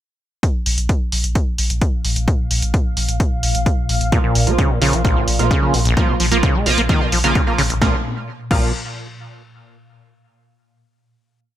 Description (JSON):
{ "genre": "driving peak-time techno", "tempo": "130 BPM", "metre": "4/4", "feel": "straight", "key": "Bb minor", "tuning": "A4 = 440 Hz", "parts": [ { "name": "swarming drone", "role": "drone", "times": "1.7-7.9 s", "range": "Bb2", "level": "-26 LUFS", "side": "left 2 dB", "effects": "built-in reverb, sidechain pumping" }, { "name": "electronic kick drum", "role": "drums", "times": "0.4-8.6 s", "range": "none", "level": "-18 LUFS", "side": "equal", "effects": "none" }, { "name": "punchy analog drum machine", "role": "drums", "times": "0.4-8.6 s", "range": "crash cymbal, hi-hat, snare drum", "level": "-23 LUFS", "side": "equal", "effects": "gated reverb" }, { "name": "saturated sub bass", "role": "bass", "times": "0.7-8.7 s", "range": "Bb1", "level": "-22 LUFS", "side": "equal", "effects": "tube saturation, sidechain pumping, low-pass filter" }, { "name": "acid bass, saw", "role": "riff", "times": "4.1-8.7 s", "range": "Bb1 to Bb3", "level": "-20 LUFS", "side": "equal", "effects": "wide subtle chorus, cassette tape, sidechain pumping, digital delay" }, { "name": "sync-sweep polysynth", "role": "stabs", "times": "4.1-8.7 s", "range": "F3 to F4", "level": "-21 LUFS", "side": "right 3 dB", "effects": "chorus, phaser, sidechain pumping, digital delay" } ], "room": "light reverb, digital ambience", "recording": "bright 1980s-style digital production", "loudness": "-15 LUFS", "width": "side -12 dB against mid", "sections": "0.4-7.8 groove; 7.8-9.7 final chord", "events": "none", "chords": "0.4 Bb5" }